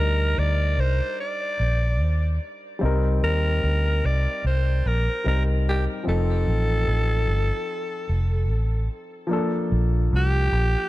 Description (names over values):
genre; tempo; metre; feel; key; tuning
lovers rock reggae; 74 BPM; 4/4; swing 58% on 16ths; unclear; A4 = 440 Hz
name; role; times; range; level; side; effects
growling alto saxophone; melody; 0.0-10.9 s; G4 to D5; -27 LUFS; equal; tape echo
warm grand piano; accompaniment; 0.0-10.9 s; F3 to Bb4; -29 LUFS; left 2 dB; none
vintage muted fingered electric bass; bass; 0.0-10.7 s; F1 to Eb2; -21 LUFS; equal; none
room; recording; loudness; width
little or no reverb; dark, warm production, nothing above 10.7 kHz; -21 LUFS; side -17 dB against mid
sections
0.0-9.3 A section; 9.3-10.9 B section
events
none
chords
0.0 Ebmaj7; 6.1 F7; 9.3 Bbmaj7